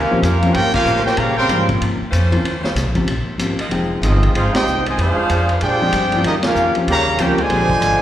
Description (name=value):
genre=jazz, big band swing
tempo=190 BPM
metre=4/4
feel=swing 61% on 8ths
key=Eb major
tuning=A4 = 436 Hz
part: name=clear trumpet section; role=melody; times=0.0-1.7, 4.0-8.0 s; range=C4 to C6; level=-18 LUFS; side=equal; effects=slapback echo
part: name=warm trombone section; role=second line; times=0.0-1.7, 4.0-8.0 s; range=C3 to Ab4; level=-21 LUFS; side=right 3 dB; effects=slapback echo
part: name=upright bass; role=bass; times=0.0-8.0 s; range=F1 to Bb2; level=-20 LUFS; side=equal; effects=none
part: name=warm grand piano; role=accompaniment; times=0.1-7.7 s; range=F3 to G5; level=-21 LUFS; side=left 2 dB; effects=slapback echo
part: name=vintage drum kit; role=drums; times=0.2-7.9 s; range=crash cymbal, hi-hat, kick drum, ride cymbal, snare drum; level=-25 LUFS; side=equal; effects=none
part: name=clear saxophone section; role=sustained chords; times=0.9-8.0 s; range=G3 to Eb5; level=-27 LUFS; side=equal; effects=none
room=light reverb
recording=live gig heard through the venue's PA, recital hall reverb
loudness=-14 LUFS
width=side -12 dB against mid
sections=0.0-8.0 A section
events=band accent 0.7, 4.5, 6.4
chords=0.0 Eb13; 3.7 Fm7; 5.0 Bb13; 6.2 Eb13; 7.5 Bb13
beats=0.23 0.55 0.87 | 1.18 1.50 1.82 2.13 | 2.45 2.77 3.08 3.40 | 3.71 4.03 4.35 4.66 | 4.98 5.29 5.61 5.93 | 6.24 6.56 6.88 7.19 | 7.51 7.82